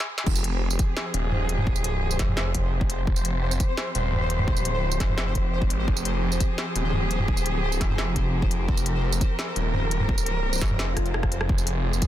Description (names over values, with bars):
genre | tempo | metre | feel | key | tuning
half-time drum and bass | 171 BPM | 4/4 | half-time | F minor | A4 = 438 Hz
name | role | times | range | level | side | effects
warm chamber cello section | sustained chords | 0.0-12.1 s | F3 to C5 | -31 LUFS | equal | sidechain pumping
industrial drum kit | drums | 0.0-12.1 s | crash cymbal, hi-hat, rim click, snare drum, tambourine, toms | -30 LUFS | equal | none
phased detuned saw bass | bass | 0.3-12.0 s | Eb1 to Ab1 | -26 LUFS | equal | phaser
electronic kick drum | drums | 0.3-12.1 s | none | -25 LUFS | equal | high-pass filter on kick
pulsing gated texture | texture | 0.6-12.1 s | C5 | -36 LUFS | left 1 dB | chorus, built-in reverb
swell | sound effects | 10.9-11.5 s | none | -39 LUFS | left 3 dB | none
room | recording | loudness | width
little or no reverb | dense, heavily limited modern master, high-pass filter | -22 LUFS | side -12 dB against mid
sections
0.3-12.1 A section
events
break 0.0; drum fill 0.0, 11.0-11.5; drop 0.3-12.1; swell 10.9-11.5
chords
0.3 Fmadd9